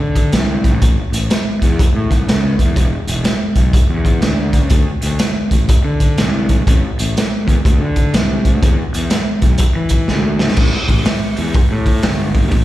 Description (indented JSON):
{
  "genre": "blues rock power trio and southern rock",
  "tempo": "123 BPM",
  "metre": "4/4",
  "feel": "swing 64% on 8ths",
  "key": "unclear",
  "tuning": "A4 = 440 Hz",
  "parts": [
    { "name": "fuzz fingered electric bass", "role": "bass", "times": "0.0-12.6 s", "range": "E1 to E3", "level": "-18 LUFS", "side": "equal", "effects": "overdrive" },
    { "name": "raw garage drum kit", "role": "drums", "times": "0.2-12.6 s", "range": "crash cymbal, hi-hat, kick drum, snare drum", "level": "-14 LUFS", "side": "equal", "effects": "none" }
  ],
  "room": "little or no reverb",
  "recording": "live gig heard through the venue's PA, recital hall reverb",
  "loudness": "-12 LUFS",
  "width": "side -15 dB against mid",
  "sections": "0.0-10.6 A section; 10.6-12.6 B section",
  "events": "drum fill 10.1-10.6",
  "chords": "none",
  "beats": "0.34 | 0.82 1.31 1.79 2.28 | 2.77 3.26 3.75 4.23 | 4.72 5.21 5.70 6.19 | 6.67 7.16 7.65 8.14 | 8.63 9.12 9.61 10.10 | 10.58 11.07 11.56 12.05 | 12.54"
}